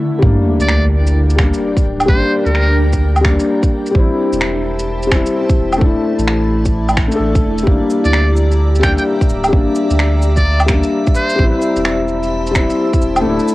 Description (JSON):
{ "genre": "future garage", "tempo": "129 BPM", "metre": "4/4", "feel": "swing 63% on 16ths", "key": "G dorian", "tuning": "A4 = 440 Hz", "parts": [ { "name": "felt-muted upright piano", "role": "accompaniment", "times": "0.0-13.5 s", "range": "G3 to A4", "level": "-17 LUFS", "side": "left 2 dB", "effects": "sidechain pumping, cassette tape, tape echo" }, { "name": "granular cloud pad", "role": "sustained chords", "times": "0.0-13.5 s", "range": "D3 to Bb5", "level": "-24 LUFS", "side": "right 1 dB", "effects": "built-in reverb, sidechain pumping, cassette tape" }, { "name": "warm sub bass", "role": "bass", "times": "0.2-13.4 s", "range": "D1 to D2", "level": "-16 LUFS", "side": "equal", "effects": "tube saturation, sidechain pumping" }, { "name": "electronic kick drum", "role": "drums", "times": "0.2-13.0 s", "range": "none", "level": "-14 LUFS", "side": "equal", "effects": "cassette tape" }, { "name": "sub drop", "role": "sound effects", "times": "0.2-2.1 s", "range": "none", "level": "-20 LUFS", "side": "right 1 dB", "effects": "none" }, { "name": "trumpet with metal mute", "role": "melody", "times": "0.6-2.8, 8.1-11.4 s", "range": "Bb4 to G5", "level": "-21 LUFS", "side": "right 1 dB", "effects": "cassette tape, tape echo" }, { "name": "electronic shaker, finger snaps, woodblock and cabasa", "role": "drums", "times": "0.6-13.5 s", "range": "none", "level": "-20 LUFS", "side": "equal", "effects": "cassette tape" }, { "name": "drifting glass-harmonics texture", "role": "texture", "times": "8.4-13.5 s", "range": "E5", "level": "-26 LUFS", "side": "equal", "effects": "chorus, built-in reverb, cassette tape" } ], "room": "light reverb", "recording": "home recording on cassette", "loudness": "-12 LUFS", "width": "side -18 dB against mid", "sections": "0.2-13.5 A section", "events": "break 0.0; impact 0.2-2.1; kick drops out 13.2", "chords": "0.2 Gm; 3.9 Am7; 5.8 Dsus2; 7.7 Gm; 11.4 Am7" }